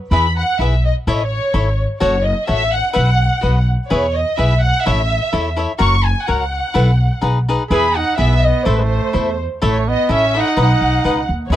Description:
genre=mexican folk, mariachi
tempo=126 BPM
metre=2/4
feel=swing 54% on 8ths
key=E major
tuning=A4 = 440 Hz
part: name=dark studio violin section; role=melody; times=0.1-11.6 s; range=B4 to C#6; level=-19 LUFS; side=equal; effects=none
part: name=cavaquinho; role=accompaniment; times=0.1-11.6 s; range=D#4 to F#5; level=-20 LUFS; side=left 4 dB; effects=none
part: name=upright bass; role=bass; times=0.1-11.6 s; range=F#1 to E2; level=-16 LUFS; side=equal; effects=none
part: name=warm trumpet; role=second line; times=7.7-11.6 s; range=G#3 to G#4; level=-21 LUFS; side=right 4 dB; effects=none
room=little or no reverb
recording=dry, close 1970s-style studio recording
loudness=-14 LUFS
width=side -12 dB against mid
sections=0.1-11.6 A section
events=none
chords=0.1 E; 1.1 A; 2.0 F#m; 2.9 Bsus4; 3.4 B; 3.9 E; 4.9 A; 5.8 F#; 6.8 B7sus4; 7.2 B6; 7.7 E; 8.7 Am; 9.6 A; 10.6 B

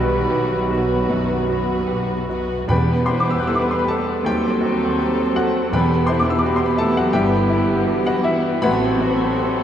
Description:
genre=classical, romantic movement for piano and orchestra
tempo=74-86 BPM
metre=4/4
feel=rubato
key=E minor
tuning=A4 = 440 Hz
part: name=clear baby grand piano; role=melody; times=0.0-9.6 s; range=A1 to F#6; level=-21 LUFS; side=left 1 dB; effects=none
part: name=muted chamber violin section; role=melody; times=0.0-9.6 s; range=F#4 to B4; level=-33 LUFS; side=equal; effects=none
part: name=concert flute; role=second line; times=0.0-9.6 s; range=B5 to B#5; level=-31 LUFS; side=left 3 dB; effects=none
part: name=dark clarinet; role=second line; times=0.0-9.6 s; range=E4 to A4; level=-28 LUFS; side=right 4 dB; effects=none
part: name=muted chamber violin section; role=second line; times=0.0-9.6 s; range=G3 to G4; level=-30 LUFS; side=left 1 dB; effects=none
part: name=muted chamber viola section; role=accompaniment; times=0.0-9.6 s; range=B3 to B#3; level=-27 LUFS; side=equal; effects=none
part: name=mellow French horn section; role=sustained chords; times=0.0-9.6 s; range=E3 to B#3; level=-25 LUFS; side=right 1 dB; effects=none
part: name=mellow trumpet section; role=stabs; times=0.0-9.6 s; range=G4 to B4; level=-29 LUFS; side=left 1 dB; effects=none
part: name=muted chamber cello section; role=bass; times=0.0-9.6 s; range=D#3 to F#4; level=-30 LUFS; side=right 1 dB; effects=none
part: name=muted chamber double bass section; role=bass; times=0.0-9.3 s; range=G1 to E2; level=-28 LUFS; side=equal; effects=none
part: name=timpani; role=percussion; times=0.0-6.7 s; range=E2 to B2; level=-27 LUFS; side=right 1 dB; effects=none
room=wet huge ambient reverb, RT60 7.8 s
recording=in a vast, echoing space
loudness=-17 LUFS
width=side -10 dB against mid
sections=0.0-9.6 A section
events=none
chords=0.0 B; 2.7 Em; 4.3 D#dim7; 5.7 Em; 7.1 Em/G; 8.6 F#dim/A

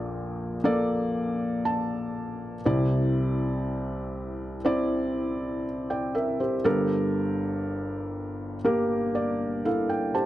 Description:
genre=pop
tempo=60 BPM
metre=4/4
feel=straight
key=unclear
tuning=A4 = 441 Hz
part: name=felt-muted upright piano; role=solo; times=0.0-10.3 s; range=G1 to A5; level=-25 LUFS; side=equal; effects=none
room=light reverb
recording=dry, close 1970s-style studio recording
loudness=-25 LUFS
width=side -14 dB against mid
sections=0.0-10.3 A section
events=felt piano fill 1.1-2.6, 8.7-10.3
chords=0.0 Bbmaj7; 2.6 Cadd9; 6.7 Gmadd9

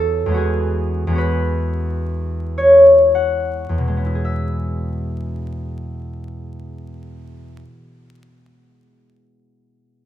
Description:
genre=classical, solo harp piece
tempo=51-80 BPM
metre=3/4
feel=rubato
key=E major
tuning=A4 = 440 Hz
part: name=concert harp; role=solo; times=0.0-7.7 s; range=E2 to G#5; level=-16 LUFS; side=left 1 dB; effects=none
room=light reverb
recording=dark, warm production, vinyl crackle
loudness=-15 LUFS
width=side -11 dB against mid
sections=0.0-4.2 A section; 4.2-10.1 B section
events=slowing down 0.0-4.2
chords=0.0 E69; 4.2 E

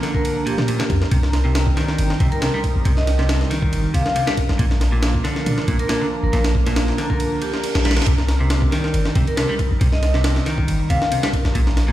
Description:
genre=breakbeat, breaks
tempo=138 BPM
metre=4/4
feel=swing 54% on 16ths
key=C minor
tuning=A4 = 440 Hz
part: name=phased analog pad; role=sustained chords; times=0.0-11.9 s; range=F3 to Bb4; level=-28 LUFS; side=right 2 dB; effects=phaser, chorus, sidechain pumping
part: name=clean electric guitar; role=riff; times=0.0-11.9 s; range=Bb2 to G3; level=-24 LUFS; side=equal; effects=tube saturation, ping-pong delay
part: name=breakbeat sampler-style drum kit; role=drums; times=0.0-11.9 s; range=kick drum, ride cymbal, snare drum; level=-21 LUFS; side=equal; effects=none
part: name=vibraphone with medium hard mallets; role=melody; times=0.1-11.1 s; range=G4 to F5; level=-27 LUFS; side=left 1 dB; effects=old record sound, ping-pong delay
part: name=warm 808-style bass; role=bass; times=0.6-11.9 s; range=G1 to Bb2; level=-19 LUFS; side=equal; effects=none
part: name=reverse cymbal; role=sound effects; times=7.4-8.1 s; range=none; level=-29 LUFS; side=right 4 dB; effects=none
room=light reverb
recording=played on a big sound system in a bare room, stone room reverb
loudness=-16 LUFS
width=side -14 dB against mid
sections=0.0-11.9 A section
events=reverse cymbal 7.4-8.1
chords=0.0 Bb; 1.1 Cm7; 4.6 Bb; 8.1 Cm7

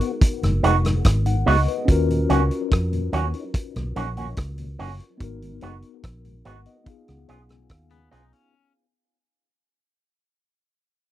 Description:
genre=lovers rock reggae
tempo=72 BPM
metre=4/4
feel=straight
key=Eb minor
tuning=A4 = 440 Hz
part: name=mellow tine electric piano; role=accompaniment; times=0.0-8.5 s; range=Cb4 to Ab5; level=-28 LUFS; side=left 4 dB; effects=medium stereo tremolo, tape echo
part: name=mellow tonewheel organ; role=accompaniment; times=0.0-8.2 s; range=Eb2 to Gb4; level=-31 LUFS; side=left 5 dB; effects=chorus vibrato, slow rotary speaker, tape echo
part: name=vintage drum kit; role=drums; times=0.0-8.5 s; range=hi-hat, kick drum, rim click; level=-20 LUFS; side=equal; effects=none
part: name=vintage muted fingered electric bass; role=bass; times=0.4-8.3 s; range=F1 to F2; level=-23 LUFS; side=equal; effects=none
part: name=electric guitar with an envelope filter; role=stabs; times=0.6-8.2 s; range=Bb3 to Ab4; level=-24 LUFS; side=right 6 dB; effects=none
part: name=twangy electric guitar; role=arpeggios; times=7.9-8.7 s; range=Cb4 to Eb4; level=-67 LUFS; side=left 7 dB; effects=none
room=little or no reverb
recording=dry, close 1970s-style studio recording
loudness=-19 LUFS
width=side -13 dB against mid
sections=0.0-8.5 A section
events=fade-out 0.0-8.5; tine electric piano fill 6.0-8.5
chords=0.0 Abm7; 1.9 Ebm7; 5.2 Abm7; 6.9 Db7

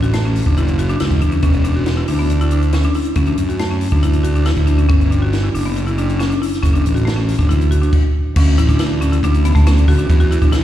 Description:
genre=math rock and midwest emo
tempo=139 BPM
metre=4/4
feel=straight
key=D major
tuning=A4 = 440 Hz
part: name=buzzing marimba with medium hard mallets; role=arpeggios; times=0.0-10.6 s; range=A3 to F#4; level=-20 LUFS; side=left 2 dB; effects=slapback echo
part: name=fuzz fingered electric bass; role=bass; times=0.0-10.6 s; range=E1 to F#2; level=-16 LUFS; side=equal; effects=overdrive
part: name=compact cocktail drum kit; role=drums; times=0.0-10.6 s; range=crash cymbal, hi-hat, kick drum, snare drum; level=-18 LUFS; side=equal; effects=none
room=little or no reverb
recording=live gig heard through the venue's PA, recital hall reverb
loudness=-13 LUFS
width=side -12 dB against mid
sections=0.0-8.4 A section; 8.4-10.6 B section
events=none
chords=0.0 F#m7; 1.4 E5; 3.2 Dmaj7; 4.9 Gmaj7; 6.6 F#m; 7.5 D; 8.4 Dmaj7(no3); 10.1 E5

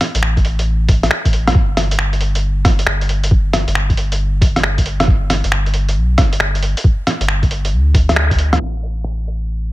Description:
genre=future garage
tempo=136 BPM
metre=4/4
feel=swing 65% on 16ths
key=unclear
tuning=A4 = 439 Hz
part: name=lo-fi sampler-style drum kit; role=drums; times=0.0-9.4 s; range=finger snaps, hi-hat, rim click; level=-17 LUFS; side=equal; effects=low-pass filter on hats, low-pass filter on snare
part: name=warm sub bass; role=bass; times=0.1-9.7 s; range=G1 to D2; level=-17 LUFS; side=equal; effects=sidechain pumping
part: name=electronic kick drum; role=drums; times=0.4-8.4 s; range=none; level=-14 LUFS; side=equal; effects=none
room=little or no reverb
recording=low-pass filter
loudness=-13 LUFS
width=side -18 dB against mid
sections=0.0-8.6 A section; 8.6-9.7 B section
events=band accent 8.2; filter sweep 8.6-9.7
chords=none

